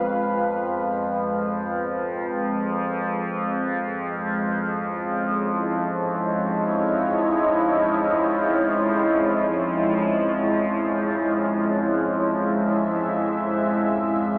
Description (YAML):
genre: dark ambient drone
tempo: free time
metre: none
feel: none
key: unclear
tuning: A4 = 440 Hz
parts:
  - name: deep dark ambient pad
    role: sustained chords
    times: 0.0-14.4 s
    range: Ab3 to F5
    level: -22 LUFS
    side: equal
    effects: chorus, built-in reverb
  - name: overtone-sweeping drone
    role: drone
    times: 0.0-14.4 s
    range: F2 to F3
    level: -25 LUFS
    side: equal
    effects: chorus, built-in reverb, phaser
room: wet plate reverb, RT60 3.0 s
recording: dreamy mix soaked in reverb, small speaker sound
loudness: -20 LUFS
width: side -33 dB against mid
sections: 0.0-14.4 A section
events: none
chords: 0.0 Fm; 2.7 Dbmadd9